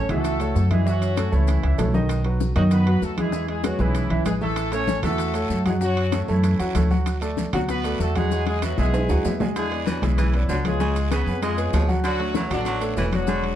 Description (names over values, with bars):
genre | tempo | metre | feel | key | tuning
latin, salsa | 193 BPM | 4/4 | straight | unclear | A4 = 440 Hz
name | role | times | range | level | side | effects
warm horn section | melody | 0.0-13.6 s | D3 to C#5 | -27 LUFS | left 1 dB | none
clear grand piano | accompaniment | 0.0-13.5 s | D#3 to G#5 | -27 LUFS | right 1 dB | none
upright bass | bass | 0.0-13.6 s | E1 to F#2 | -23 LUFS | equal | none
bongos | percussion | 0.1-13.3 s | none | -33 LUFS | left 8 dB | none
congas | percussion | 0.1-13.6 s | none | -30 LUFS | left 2 dB | none
maracas | percussion | 0.1-13.4 s | none | -45 LUFS | left 6 dB | none
timbales | percussion | 0.1-13.6 s | none | -34 LUFS | right 5 dB | none
guiro | percussion | 4.6-13.6 s | none | -41 LUFS | right 6 dB | none
raspy baritone saxophone | second line | 9.6-13.4 s | C#3 to G#3 | -30 LUFS | right 1 dB | none
room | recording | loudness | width
light reverb | dark, warm production | -20 LUFS | side -11 dB against mid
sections
0.0-9.6 A section; 9.6-13.6 B section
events
drum fill 8.3-9.6, 13.3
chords
0.0 A; 0.9 F#m7; 2.1 B; 3.3 E; 4.6 A; 5.8 F#m; 7.1 Dadd9; 8.3 Eadd9; 9.6 E7; 10.8 C#7; 12.0 Dmaj7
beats
0.25 0.55 | 0.86 1.17 1.48 1.78 | 2.09 2.40 2.71 3.02 | 3.33 3.64 3.95 4.26 | 4.57 4.88 5.19 5.50 | 5.81 6.13 6.44 6.75 | 7.06 7.37 7.69 8.00 | 8.31 8.62 8.94 9.25 | 9.56 9.87 10.18 10.49 | 10.80 11.11 11.42 11.73 | 12.04 12.35 12.66 12.97 | 13.28